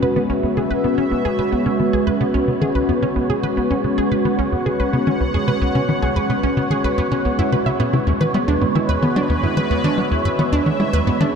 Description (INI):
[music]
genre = ambient, sequencer-driven space music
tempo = 110 BPM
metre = 4/4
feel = straight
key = unclear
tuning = A4 = 439 Hz
[part]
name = sweeping resonant pad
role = sustained chords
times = 0.0-11.4 s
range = G#3 to F#5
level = -20 LUFS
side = left 1 dB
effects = chorus
[part]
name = wide unison pluck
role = arpeggios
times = 0.0-11.3 s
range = B3 to E5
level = -23 LUFS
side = right 2 dB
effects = auto-pan, tape echo
[part]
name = tight sequencer bass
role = riff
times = 0.0-11.2 s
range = C#2 to G#3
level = -21 LUFS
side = equal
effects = tape echo
[part]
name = wind-like tuned noise texture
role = texture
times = 0.4-11.4 s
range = C#5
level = -27 LUFS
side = right 3 dB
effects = built-in reverb
[sound]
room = wet cathedral reverb, RT60 5.5 s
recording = in a vast, echoing space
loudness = -16 LUFS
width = side -6 dB against mid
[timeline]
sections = 0.0-11.4 A section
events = filter sweep on analog synth bass 0.0-11.4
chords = 0.0 C#m7; 8.2 E7